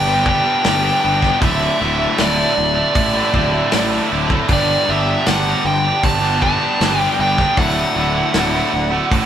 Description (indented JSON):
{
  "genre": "quiet-loud alternative rock",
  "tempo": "78 BPM",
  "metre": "4/4",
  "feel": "straight",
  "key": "D major",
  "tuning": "A4 = 440 Hz",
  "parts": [
    { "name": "biting lead guitar", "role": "melody", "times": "0.0-9.3 s", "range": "D5 to A5", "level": "-19 LUFS", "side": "equal", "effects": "overdrive" },
    { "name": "dark studio string section", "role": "sustained chords", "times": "0.0-9.3 s", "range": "F#4 to A5", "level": "-29 LUFS", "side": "left 1 dB", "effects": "none" },
    { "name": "distorted electric guitar", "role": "riff", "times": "0.0-9.3 s", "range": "D2 to G4", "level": "-20 LUFS", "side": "right 6 dB", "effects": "overdrive" },
    { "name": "fuzz fingered electric bass", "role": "bass", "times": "0.0-9.3 s", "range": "D1 to A1", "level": "-22 LUFS", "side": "equal", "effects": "overdrive" },
    { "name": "distorted electric guitar", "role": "riff", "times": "0.1-8.9 s", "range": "D2 to G4", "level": "-22 LUFS", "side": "left 6 dB", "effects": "distortion" },
    { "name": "loose indie drum kit", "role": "drums", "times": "0.3-9.3 s", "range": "hi-hat, kick drum, snare drum", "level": "-21 LUFS", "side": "equal", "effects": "none" }
  ],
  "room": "moderate studio reverb, RT60 1.0 s",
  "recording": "band playing live in one room",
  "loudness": "-14 LUFS",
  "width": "side -9 dB against mid",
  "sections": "0.0-9.3 A section",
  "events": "none",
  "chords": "0.0 Gadd9; 1.4 Dadd9; 4.5 Gadd9; 7.6 Dadd9"
}